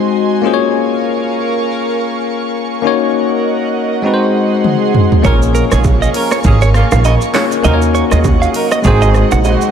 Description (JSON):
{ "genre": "afrobeats", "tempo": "100 BPM", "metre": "4/4", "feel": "swing 58% on 16ths", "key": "Bb minor", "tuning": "A4 = 440 Hz", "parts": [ { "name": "bell-like tine electric piano", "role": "accompaniment", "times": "0.0-9.7 s", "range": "Ab3 to Db5", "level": "-15 LUFS", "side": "moving between left 11 dB and left 1 dB", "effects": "auto-pan" }, { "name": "airy breathy pad", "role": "sustained chords", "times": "0.0-9.7 s", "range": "Gb4 to Db6", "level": "-19 LUFS", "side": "right 2 dB", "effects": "chorus" }, { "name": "deep house drum kit", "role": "drums", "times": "4.6-9.7 s", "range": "handclaps, hi-hat, kick drum, rim click, shaker, toms", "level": "-16 LUFS", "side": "right 1 dB", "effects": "none" }, { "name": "mellow horn section", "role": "second line", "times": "5.2-9.7 s", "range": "Db3 to Bb4", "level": "-20 LUFS", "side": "right 5 dB", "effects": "none" }, { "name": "direct-recorded clean electric guitar", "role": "riff", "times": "5.2-9.5 s", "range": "Bb4 to Gb5", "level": "-19 LUFS", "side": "right 6 dB", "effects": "ping-pong delay" }, { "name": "upright bass", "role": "bass", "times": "5.2-9.5 s", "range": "Ab1 to Eb2", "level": "-12 LUFS", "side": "right 1 dB", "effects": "none" }, { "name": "congas and bongos", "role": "percussion", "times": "5.2-9.6 s", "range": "none", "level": "-22 LUFS", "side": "right 7 dB", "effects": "none" } ], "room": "moderate plate reverb, RT60 2.6 s", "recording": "dreamy mix soaked in reverb", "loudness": "-10 LUFS", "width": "side -8 dB against mid", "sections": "0.0-9.7 A section", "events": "drum fill 4.6-5.2", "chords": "0.4 Bbm7; 2.8 Ebm7; 4.0 Ab7; 5.2 Bbm7; 7.6 Ebm7; 8.8 Ab7" }